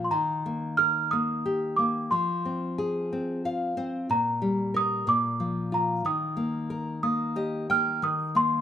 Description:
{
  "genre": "children's music, lullaby",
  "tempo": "60 BPM (dotted quarters)",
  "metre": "6/8",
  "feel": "rubato",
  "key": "Eb major",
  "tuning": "A4 = 439 Hz",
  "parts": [
    { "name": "small celesta", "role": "melody", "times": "0.0-8.6 s", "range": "Bb5 to F6", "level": "-26 LUFS", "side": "right 2 dB", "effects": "none" },
    { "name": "nylon-string guitar", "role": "accompaniment", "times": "0.0-8.6 s", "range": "Bb2 to G5", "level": "-29 LUFS", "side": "left 2 dB", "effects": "none" }
  ],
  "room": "light reverb",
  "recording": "close, detailed microphones",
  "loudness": "-25 LUFS",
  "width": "side -9 dB against mid",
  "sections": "0.0-8.0 A section",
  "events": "nylon-string guitar fill 3.1-4.1, 7.0-8.0",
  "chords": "0.1 Eb; 2.1 Fm; 4.1 Eb/Bb; 5.1 Bb; 6.0 Eb; 8.0 Eb5"
}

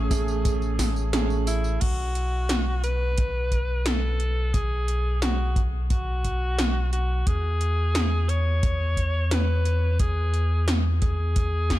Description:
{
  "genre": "synthwave",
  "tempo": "88 BPM",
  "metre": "4/4",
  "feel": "straight",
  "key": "unclear",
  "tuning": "A4 = 441 Hz",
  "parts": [
    { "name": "bright alto saxophone", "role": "melody", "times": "0.0-11.8 s", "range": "E4 to C#5", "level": "-30 LUFS", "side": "left 1 dB", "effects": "ping-pong delay" },
    { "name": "FM electric piano with soft pad layer", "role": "second line", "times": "0.0-1.1 s", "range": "G#4", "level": "-44 LUFS", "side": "left 3 dB", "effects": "none" },
    { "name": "warm analog pad", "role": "sustained chords", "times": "0.0-1.8 s", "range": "A3 to C#4", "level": "-41 LUFS", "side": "right 2 dB", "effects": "none" },
    { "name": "warm concert grand piano", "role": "stabs", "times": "0.0-1.8 s", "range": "A3 to G#4", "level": "-30 LUFS", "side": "right 6 dB", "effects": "vintage 12-bit sampler grit, tape echo" },
    { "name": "round analog bass", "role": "bass", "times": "0.0-11.8 s", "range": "A1 to E2", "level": "-24 LUFS", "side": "equal", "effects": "tube saturation, sidechain pumping" },
    { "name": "80s electronic pad drums", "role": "drums", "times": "0.1-11.8 s", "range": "crash cymbal, hi-hat, snare drum, tambourine", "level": "-30 LUFS", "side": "equal", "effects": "none" },
    { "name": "kick drum", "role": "drums", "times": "0.1-11.8 s", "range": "none", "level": "-25 LUFS", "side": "equal", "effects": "none" }
  ],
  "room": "studio ambience",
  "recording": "dark, warm production",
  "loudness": "-22 LUFS",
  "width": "side -15 dB against mid",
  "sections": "0.0-1.8 A section; 1.8-11.8 B section",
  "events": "none",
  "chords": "0.0 Amaj7; 1.8 B5; 7.3 E"
}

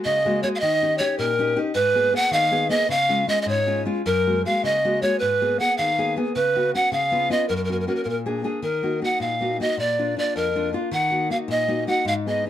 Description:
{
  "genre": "italian folk, Italian serenade",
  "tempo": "105 BPM (dotted quarters)",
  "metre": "6/8",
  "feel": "straight",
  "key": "F# major, Eb harmonic minor from 8.6 s",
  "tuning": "A4 = 440 Hz",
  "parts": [
    { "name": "breathy bright pan flute", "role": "melody", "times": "0.0-12.4 s", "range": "A#4 to F#5", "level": "-21 LUFS", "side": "right 1 dB", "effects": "none" },
    { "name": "nylon-string guitar", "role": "accompaniment", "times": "0.0-12.5 s", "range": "F2 to G#4", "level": "-25 LUFS", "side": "left 2 dB", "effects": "none" }
  ],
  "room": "moderate studio reverb, RT60 0.6 s",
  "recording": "dark, warm production",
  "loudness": "-20 LUFS",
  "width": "side -11 dB against mid",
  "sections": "0.0-8.6 A section; 8.6-12.5 B section",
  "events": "none",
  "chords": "0.0 F#add9; 0.6 D#7; 1.8 G#madd9; 2.9 C#; 4.0 F#add9; 5.2 G#madd9; 6.3 C#7sus4; 6.9 C#7; 7.5 F#; 8.1 A#7; 8.6 Ebm; 9.8 Bb; 10.9 Ebm"
}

